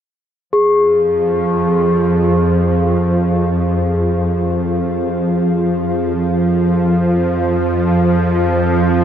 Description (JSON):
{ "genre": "dark ambient drone", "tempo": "free time", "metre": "none", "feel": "none", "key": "F minor", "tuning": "A4 = 440 Hz", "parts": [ { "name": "dark analog pad", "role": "sustained chords", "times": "1.2-9.0 s", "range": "F4 to F5", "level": "-24 LUFS", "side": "left 2 dB", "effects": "chorus" }, { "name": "bowed-like drone", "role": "drone", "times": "0.8-9.0 s", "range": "F2 to F3", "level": "-14 LUFS", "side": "right 1 dB", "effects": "built-in reverb" }, { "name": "bronze singing bowl", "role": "texture", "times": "0.5-9.0 s", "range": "Ab4", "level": "-19 LUFS", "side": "left 1 dB", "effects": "none" } ], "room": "wet huge ambient reverb, RT60 8.4 s", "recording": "dreamy mix soaked in reverb", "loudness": "-13 LUFS", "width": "side -9 dB against mid", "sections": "0.5-9.0 A section", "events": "none", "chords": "0.5 Fm", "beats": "free time" }